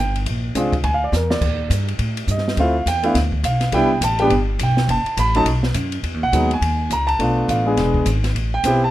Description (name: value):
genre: jazz, small-group swing and bop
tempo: 208 BPM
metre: 4/4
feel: swing 61% on 8ths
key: unclear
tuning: A4 = 444 Hz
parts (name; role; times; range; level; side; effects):
- warm concert grand piano; accompaniment; 0.0-8.9 s; F#3 to B5; -19 LUFS; right 1 dB; none
- upright bass; bass; 0.0-8.9 s; E1 to A2; -20 LUFS; equal; none
- open jazz drum kit; drums; 0.2-8.7 s; crash cymbal, hi-hat, kick drum, ride cymbal, snare drum; -26 LUFS; equal; none
room: small room reverb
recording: rough home demo mix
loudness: -16 LUFS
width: side -14 dB against mid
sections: 0.0-6.0 A section; 6.0-8.9 A section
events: drum fill 1.1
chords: 0.3 Bb7; 1.4 Ebmaj7; 2.6 Dm7; 3.1 Bdim; 3.7 Cmaj7; 4.9 F#m; 5.5 B5; 6.0 Emaj7 (rootless); 7.2 Bm7b5; 7.8 E7; 8.3 Am7